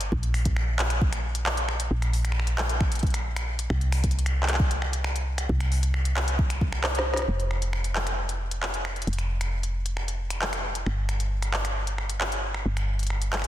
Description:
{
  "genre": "IDM",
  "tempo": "134 BPM",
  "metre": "4/4",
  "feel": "straight",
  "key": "unclear",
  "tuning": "A4 = 440 Hz",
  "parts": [
    { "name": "woody FM bass", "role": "bass", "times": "0.0-13.5 s", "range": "F1 to C2", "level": "-27 LUFS", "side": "equal", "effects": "none" },
    { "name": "organic electronic drum kit", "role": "drums", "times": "0.0-13.5 s", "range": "finger snaps, handclaps, hi-hat, snare drum", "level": "-29 LUFS", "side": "equal", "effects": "none" },
    { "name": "electronic kick drum", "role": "drums", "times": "0.1-6.7 s", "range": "none", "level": "-26 LUFS", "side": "equal", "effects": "none" }
  ],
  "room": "light reverb",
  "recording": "dense, heavily limited modern master",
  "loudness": "-24 LUFS",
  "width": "side -13 dB against mid",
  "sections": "0.0-7.3 A section; 7.3-13.5 B section",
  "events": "drum fill 6.8-7.3",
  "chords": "none"
}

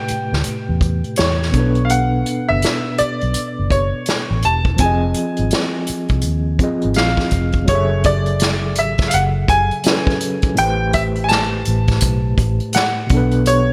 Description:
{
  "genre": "R&B, neo-soul",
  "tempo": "83 BPM",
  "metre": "4/4",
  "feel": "swing 62% on 16ths",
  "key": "unclear",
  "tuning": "A4 = 440 Hz",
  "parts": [
    { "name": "bright baby grand piano", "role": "melody", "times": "0.0-13.7 s", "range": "C#5 to A5", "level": "-23 LUFS", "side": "equal", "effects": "none" },
    { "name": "overdriven tine electric piano", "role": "accompaniment", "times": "0.0-13.7 s", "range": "A2 to E5", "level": "-24 LUFS", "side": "equal", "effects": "medium tremolo" },
    { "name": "vintage muted fingered electric bass", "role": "bass", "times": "0.1-13.7 s", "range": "E1 to E2", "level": "-22 LUFS", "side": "equal", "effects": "none" },
    { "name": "unplugged drum kit", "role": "drums", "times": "0.1-13.7 s", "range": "hi-hat, kick drum, snare drum", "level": "-21 LUFS", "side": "equal", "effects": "gated reverb" }
  ],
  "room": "light reverb, small room ambience",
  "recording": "bright 1980s-style digital production",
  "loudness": "-17 LUFS",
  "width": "mono",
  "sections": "0.0-7.7 A section; 7.7-13.7 B section",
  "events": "none",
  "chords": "0.0 Am9; 1.5 Bm9; 4.8 Fm7; 7.7 F#m9; 10.6 Am9; 13.1 Bm7"
}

